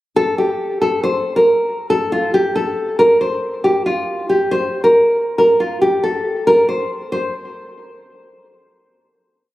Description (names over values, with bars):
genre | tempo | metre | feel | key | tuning
hip hop | 138 BPM | 4/4 | half-time | A phrygian | A4 = 440 Hz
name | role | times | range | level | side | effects
nylon-string guitar | solo | 0.2-7.3 s | F4 to C5 | -14 LUFS | equal | tape echo
room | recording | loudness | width
moderate lush hall reverb, RT60 2.6 s | recorded on a phone in the room, club ambience | -14 LUFS | side -16 dB against mid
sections
0.2-7.1 verse; 7.1-8.9 final note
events
none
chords
none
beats
| 0.16 0.60 1.03 1.47 | 1.90 2.34 2.77 3.21 | 3.64 4.08 4.51 4.95 | 5.38 5.82 6.25 6.69 | 7.12